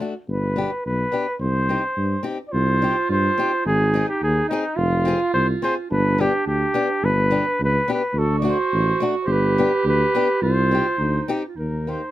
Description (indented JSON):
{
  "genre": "alpine folk, alpine dance band",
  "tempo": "106 BPM",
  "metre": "2/4",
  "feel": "straight",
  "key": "C harmonic minor",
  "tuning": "A4 = 440 Hz",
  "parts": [
    { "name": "fingerpicked old ladder-braced acoustic guitar", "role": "accompaniment", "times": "0.0-12.0 s", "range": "A3 to Ab4", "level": "-25 LUFS", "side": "left 4 dB", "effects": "none" },
    { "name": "clear flugelhorn", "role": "melody", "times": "0.3-12.1 s", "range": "Eb4 to D5", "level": "-22 LUFS", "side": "equal", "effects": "none" },
    { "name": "mellow tuba", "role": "bass", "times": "0.3-12.0 s", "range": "F1 to G2", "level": "-22 LUFS", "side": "equal", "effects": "none" },
    { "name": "warm clarinet", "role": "second line", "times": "2.5-12.1 s", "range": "D4 to G4", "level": "-26 LUFS", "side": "right 5 dB", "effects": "none" }
  ],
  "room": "little or no reverb",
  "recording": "close, detailed microphones",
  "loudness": "-18 LUFS",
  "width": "side -14 dB against mid",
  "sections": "0.0-2.5 A section; 2.5-11.6 A section",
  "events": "none",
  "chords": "0.3 G; 1.4 Cm; 3.7 Ab; 4.8 Fm; 5.9 G; 8.2 D7; 9.3 G; 10.4 Cm; 11.6 Eb",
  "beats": "| 0.28 0.84 | 1.40 1.97 | 2.53 3.10 | 3.66 4.22 | 4.78 5.33 | 5.89 6.46 | 7.03 7.59 | 8.15 8.72 | 9.28 9.85 | 10.42 10.99 | 11.57"
}